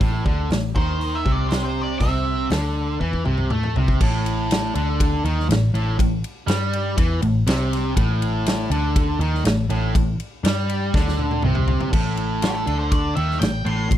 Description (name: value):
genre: blues rock power trio and southern rock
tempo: 121 BPM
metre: 4/4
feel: straight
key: A minor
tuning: A4 = 440 Hz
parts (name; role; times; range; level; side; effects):
- distorted electric guitar; riff; 0.0-14.0 s; A2 to A3; -24 LUFS; equal; overdrive
- vintage muted picked electric bass; bass; 0.0-14.0 s; A1 to A2; -23 LUFS; equal; none
- big rock drum kit; drums; 0.0-14.0 s; crash cymbal, hi-hat, kick drum, ride cymbal, snare drum, toms; -23 LUFS; equal; none
- octave-fuzz lead guitar; melody; 0.8-2.5, 12.4-13.9 s; G4 to C6; -27 LUFS; right 1 dB; distortion
room: little or no reverb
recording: dry, close 1970s-style studio recording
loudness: -19 LUFS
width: side -12 dB against mid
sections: 0.0-4.0 A section; 4.0-11.9 B section; 11.9-14.0 C section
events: drum fill 3.0-4.0, 10.9-11.9; lead electric guitar solo 11.9-14.0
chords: 0.0 Am; 11.9 N.C.